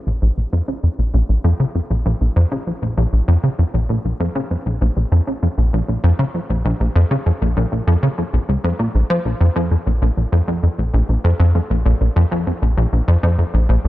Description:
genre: ambient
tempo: 98 BPM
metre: 4/4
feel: straight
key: Bb minor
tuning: A4 = 439 Hz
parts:
  - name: plucky analog bass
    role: solo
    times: 0.1-13.9 s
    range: Bb1 to F3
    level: -15 LUFS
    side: equal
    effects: wide subtle chorus, vintage 12-bit sampler grit, ping-pong delay
room: light reverb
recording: echo-heavy mix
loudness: -15 LUFS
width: side -15 dB against mid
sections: 0.0-13.9 A section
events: none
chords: none

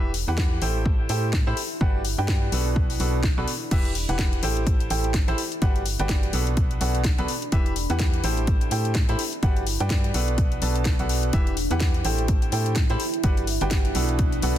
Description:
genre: piano house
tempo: 126 BPM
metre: 4/4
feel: swing 58% on 16ths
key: unclear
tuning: A4 = 440 Hz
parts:
  - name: bright upright piano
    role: riff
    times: 0.0-14.6 s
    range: B2 to B5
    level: -28 LUFS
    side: right 1 dB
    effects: sidechain pumping, ping-pong delay
  - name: organ-like FM bass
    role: bass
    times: 0.0-14.6 s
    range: E1 to A2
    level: -26 LUFS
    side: equal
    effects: sidechain pumping
  - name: deep dark ambient pad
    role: texture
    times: 0.1-14.6 s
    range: D4 to B5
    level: -34 LUFS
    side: right 1 dB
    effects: chorus, built-in reverb, sidechain pumping
  - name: house drum kit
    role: drums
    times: 0.1-14.5 s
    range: crash cymbal, hi-hat, snare drum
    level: -31 LUFS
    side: left 3 dB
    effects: overdrive
  - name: electronic kick drum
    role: drums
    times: 0.4-14.3 s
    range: none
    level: -22 LUFS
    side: equal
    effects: overdrive
room: digital ambience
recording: dense, heavily limited modern master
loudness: -21 LUFS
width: side -12 dB against mid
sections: 0.0-14.6 A section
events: fade-in on ambient pad 0.0-14.6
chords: 0.0 Em; 0.6 Am7; 1.6 Gmaj7; 2.8 Bm7; 3.7 Em; 4.4 Am7; 5.4 Gmaj7; 6.6 Bm7; 7.5 Em; 8.2 Am7; 9.2 Gmaj7; 10.4 Bm7; 11.3 Em; 12.0 Am7; 13.0 Gmaj7

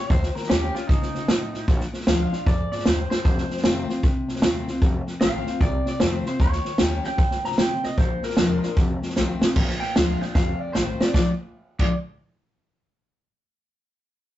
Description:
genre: rockabilly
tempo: 152 BPM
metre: 4/4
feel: swing 64% on 8ths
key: Bb major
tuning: A4 = 440 Hz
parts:
  - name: electric guitar through a small old amp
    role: melody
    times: 0.0-11.9 s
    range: Eb4 to Bb5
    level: -30 LUFS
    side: equal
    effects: none
  - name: picked steel-string acoustic guitar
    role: accompaniment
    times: 0.0-11.9 s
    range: F2 to G4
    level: -28 LUFS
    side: left 3 dB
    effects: none
  - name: upright bass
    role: bass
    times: 0.1-11.9 s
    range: E1 to Db3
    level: -30 LUFS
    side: equal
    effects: none
  - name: vintage drum kit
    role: drums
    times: 0.1-11.9 s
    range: crash cymbal, hi-hat, kick drum, snare drum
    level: -21 LUFS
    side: equal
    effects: none
room: moderate studio reverb, RT60 0.5 s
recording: rough rehearsal-room recording, tube saturation, nothing above 7.9 kHz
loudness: -20 LUFS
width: side -13 dB against mid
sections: 0.0-9.6 A section; 9.6-11.1 B section; 11.1-12.7 C section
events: drum fill 3.1, 9.2-9.6, 10.4-11.1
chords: 0.0 Eb7; 1.7 Bb7; 3.2 F7; 6.4 Eb7; 8.0 Bb7; 8.8 F7; 9.6 Bb7; 10.4 F7; 11.1 Bb7

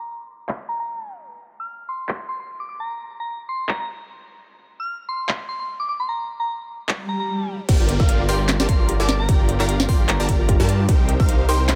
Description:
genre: future bass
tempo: 150 BPM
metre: 4/4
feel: swing 56% on 16ths, half-time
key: G minor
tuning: A4 = 440 Hz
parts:
  - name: soft synth bell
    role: melody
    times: 0.0-11.8 s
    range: Bb5 to F6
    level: -31 LUFS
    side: equal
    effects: chorus, phaser, sidechain pumping, delay
  - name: trap drum kit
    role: drums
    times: 0.5-11.8 s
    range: crash cymbal, handclaps, hi-hat, snare drum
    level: -27 LUFS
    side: equal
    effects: overdrive
  - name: swell and downlifter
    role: sound effects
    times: 7.0-10.9 s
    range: none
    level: -34 LUFS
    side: equal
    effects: none
  - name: supersaw stab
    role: riff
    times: 7.7-11.8 s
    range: Eb4 to Bb5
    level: -27 LUFS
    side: equal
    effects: sidechain pumping
  - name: detuned saw bass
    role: bass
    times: 7.7-11.8 s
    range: G1 to G2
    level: -24 LUFS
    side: equal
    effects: chorus, sidechain pumping
  - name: electronic kick drum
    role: drums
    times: 7.7-11.3 s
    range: none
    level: -20 LUFS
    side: equal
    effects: none
  - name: soft round pluck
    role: arpeggios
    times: 7.8-11.8 s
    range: F4 to Eb5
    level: -36 LUFS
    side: equal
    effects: none
room: little or no reverb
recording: low-pass filter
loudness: -22 LUFS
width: mono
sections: 0.0-7.7 A section; 7.7-11.8 B section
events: filter sweep 0.0-7.7; swell 7.0-7.7; drop 7.7-11.8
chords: 0.0 N.C.; 7.7 Gm7; 10.9 Cm7

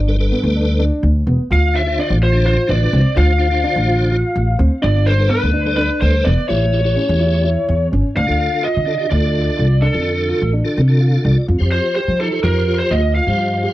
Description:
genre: progressive instrumental, progressive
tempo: 252 BPM (eighths)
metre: 7/8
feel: straight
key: D dorian, D phrygian from 8.2 s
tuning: A4 = 445 Hz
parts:
  - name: dark concert grand piano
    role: arpeggios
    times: 0.0-13.7 s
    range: B3 to G4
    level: -24 LUFS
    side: right 1 dB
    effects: none
  - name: upright bass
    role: bass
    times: 0.0-13.6 s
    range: E1 to F3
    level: -15 LUFS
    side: equal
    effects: none
  - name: tonewheel organ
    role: accompaniment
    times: 0.1-13.7 s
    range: D3 to F5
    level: -22 LUFS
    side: left 1 dB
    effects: overdrive, chorus vibrato, fast rotary speaker
  - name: lead guitar through a small cranked amp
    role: melody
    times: 1.5-13.7 s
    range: A4 to F5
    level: -20 LUFS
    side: equal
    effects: overdrive, cassette tape, tape echo
room: light reverb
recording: home recording on cassette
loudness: -14 LUFS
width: side -15 dB against mid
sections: 0.0-8.2 A section; 8.2-13.7 B section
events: tonewheel organ fill 10.8-11.5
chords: 0.0 Gadd9; 1.5 Dm7; 4.8 Gadd9; 6.5 A7; 8.2 Dm; 11.5 Fsus2

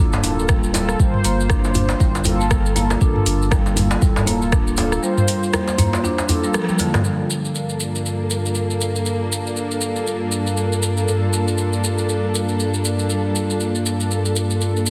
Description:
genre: afro house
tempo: 119 BPM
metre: 4/4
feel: swing 58% on 16ths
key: G minor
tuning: A4 = 439 Hz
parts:
  - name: marimba with medium hard mallets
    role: arpeggios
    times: 0.0-6.9 s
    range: D3 to D4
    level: -27 LUFS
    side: equal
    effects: sidechain pumping, dub echo
  - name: mellow synth brass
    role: stabs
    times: 0.0-14.9 s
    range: G2 to C5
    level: -25 LUFS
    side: equal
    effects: chorus, sidechain pumping, dub echo
  - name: warm sub bass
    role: bass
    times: 0.0-5.0 s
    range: D1 to G1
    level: -26 LUFS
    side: equal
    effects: sidechain pumping
  - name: afro-pop drum kit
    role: drums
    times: 0.1-7.0 s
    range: hi-hat, rim click, toms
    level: -25 LUFS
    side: equal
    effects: none
  - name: djembe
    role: percussion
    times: 0.1-7.0 s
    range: none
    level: -27 LUFS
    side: equal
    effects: none
  - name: maracas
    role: percussion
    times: 0.1-14.9 s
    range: none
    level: -30 LUFS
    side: equal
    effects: none
  - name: electronic kick drum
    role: drums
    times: 0.5-4.6 s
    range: none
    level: -20 LUFS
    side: equal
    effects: none
  - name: dark studio string section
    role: sustained chords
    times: 7.0-14.9 s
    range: G3 to A4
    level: -27 LUFS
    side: equal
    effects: vintage 12-bit sampler grit, sidechain pumping, low-pass filter
room: moderate recital hall reverb, RT60 1.6 s, studio reverb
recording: heavily compressed radio sound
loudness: -20 LUFS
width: mono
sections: 0.0-7.0 A section; 7.0-14.9 B section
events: filter sweep on analog polysynth 0.0-7.0, 7.0-14.9; drum fill 6.5-7.0; band accent 6.5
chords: 0.0 Gm7

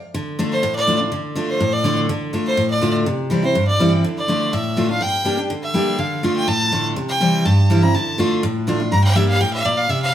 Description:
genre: bluegrass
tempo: 246 BPM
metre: 4/4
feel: straight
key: D minor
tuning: A4 = 445 Hz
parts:
  - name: picked steel-string acoustic guitar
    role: accompaniment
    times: 0.1-10.1 s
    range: G2 to G4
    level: -18 LUFS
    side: equal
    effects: none
  - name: clear fiddle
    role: melody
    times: 0.5-10.1 s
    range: C5 to Bb5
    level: -20 LUFS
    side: equal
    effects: none
room: wet large studio reverb, RT60 1.0 s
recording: band playing live in one room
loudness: -16 LUFS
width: side -11 dB against mid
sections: 0.1-10.1 A section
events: fiddle solo 0.1-10.1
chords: 0.1 Dm; 3.1 C; 4.0 Dm; 5.0 Gm; 6.0 Dm; 7.0 C; 7.9 Dm; 8.9 Gm

